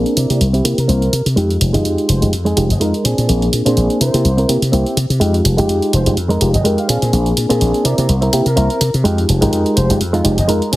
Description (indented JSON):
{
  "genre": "filtered disco house",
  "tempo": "125 BPM",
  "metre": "4/4",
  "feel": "swing 55% on 16ths",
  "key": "F dorian",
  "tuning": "A4 = 440 Hz",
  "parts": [
    { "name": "reed electric piano", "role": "accompaniment", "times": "0.0-10.6 s", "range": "Ab3 to C5", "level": "-18 LUFS", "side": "equal", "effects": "phaser, low-pass filter" },
    { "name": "direct-recorded clean electric guitar", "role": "riff", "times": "0.0-10.8 s", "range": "Ab3 to C5", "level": "-20 LUFS", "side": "right 1 dB", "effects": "low-pass filter" },
    { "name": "glassy slap bass", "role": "bass", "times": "0.0-10.8 s", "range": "F1 to C3", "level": "-16 LUFS", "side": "equal", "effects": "low-pass filter" },
    { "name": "electronic hi-hat", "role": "drums", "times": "0.1-10.8 s", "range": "none", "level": "-22 LUFS", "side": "right 1 dB", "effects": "none" },
    { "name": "brilliant trumpet section", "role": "melody", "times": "0.2-10.5 s", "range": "Bb4 to F5", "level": "-25 LUFS", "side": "equal", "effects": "low-pass filter" }
  ],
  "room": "light reverb",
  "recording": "heavily compressed radio sound",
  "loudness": "-12 LUFS",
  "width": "side -17 dB against mid",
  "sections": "0.0-10.8 A section",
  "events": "filter sweep 0.0-10.8",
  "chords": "0.2 C7; 1.4 Fm9; 3.0 Bb9; 4.0 C7; 5.2 Fm9; 6.9 Bb9; 7.8 C7; 9.0 Fm9"
}